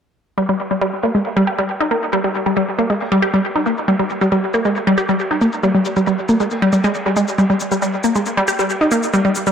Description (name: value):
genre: driving peak-time techno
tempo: 137 BPM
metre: 4/4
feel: straight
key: G phrygian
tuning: A4 = 436 Hz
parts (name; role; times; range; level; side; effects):
- wide unison pluck; riff; 0.4-9.5 s; G3 to G4; -15 LUFS; equal; dub echo
- cloth-damped thuddy drum kit; drums; 0.4-9.5 s; hi-hat, ride cymbal, snare drum; -32 LUFS; right 1 dB; high-pass filter on cymbals, low-pass filter on cymbals, high-pass filter on hats, low-pass filter on hats, high-pass filter on snare, low-pass filter on snare, high-pass filter on room, low-pass filter on room
- shaker; drums; 0.4-9.5 s; none; -31 LUFS; left 3 dB; overdrive, low-pass filter on perc, dub echo
room: wet spring reverb, RT60 1.9 s, small room ambience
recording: echo-heavy mix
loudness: -15 LUFS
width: side -8 dB against mid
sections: 0.4-9.5 A section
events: filter sweep on drum 0.4-9.5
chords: none